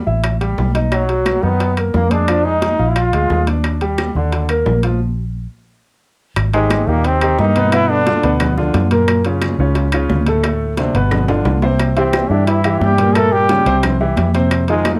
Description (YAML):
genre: Afro-Cuban jazz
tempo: 177 BPM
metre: 4/4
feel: straight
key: unclear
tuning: A4 = 442 Hz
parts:
  - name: warm concert grand piano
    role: accompaniment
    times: 0.1-15.0 s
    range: A2 to F5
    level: -21 LUFS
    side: equal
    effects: none
  - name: vintage muted fingered electric bass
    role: bass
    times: 0.1-15.0 s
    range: G1 to G2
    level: -20 LUFS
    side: equal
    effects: none
  - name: bongos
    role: percussion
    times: 0.1-15.0 s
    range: none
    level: -31 LUFS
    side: equal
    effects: none
  - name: congas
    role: percussion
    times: 0.1-15.0 s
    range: none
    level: -26 LUFS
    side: equal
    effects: none
  - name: claves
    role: percussion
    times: 0.2-15.0 s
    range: none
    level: -29 LUFS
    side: equal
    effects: none
  - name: timbales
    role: percussion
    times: 0.2-15.0 s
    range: none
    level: -29 LUFS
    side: equal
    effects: none
  - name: brilliant trombone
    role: melody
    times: 0.9-3.5, 6.5-8.4, 12.0-15.0 s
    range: F#3 to A4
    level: -20 LUFS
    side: equal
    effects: slapback echo
  - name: breathy tenor saxophone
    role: second line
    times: 0.9-3.5, 6.5-8.4, 12.0-15.0 s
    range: Ab2 to F4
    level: -26 LUFS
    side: equal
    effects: none
room: light reverb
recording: none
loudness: -16 LUFS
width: mono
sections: 0.0-6.4 A section; 6.4-15.0 B section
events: stop 5.0-6.4; drum fill 11.1-11.8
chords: 0.2 Asus2; 0.9 Bmaj7; 2.3 Fm7; 3.0 Bb7; 3.6 Ebmaj7; 5.0 N.C.; 6.4 Abmaj7; 7.7 G7; 9.1 Gbmaj7; 10.4 D5; 11.1 G7; 11.8 C; 13.2 Gm7b5; 13.8 C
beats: 0.24 0.58 | 0.92 1.26 1.60 1.94 | 2.28 2.62 2.96 3.30 | 3.64 3.98 4.33 4.67 | 5.01 5.35 5.69 6.03 | 6.37 6.71 7.05 7.39 | 7.72 8.06 8.40 8.74 | 9.08 9.42 9.76 10.10 | 10.44 10.78 11.12 11.46 | 11.80 12.14 12.47 12.81 | 13.15 13.49 13.83 14.17 | 14.51 14.85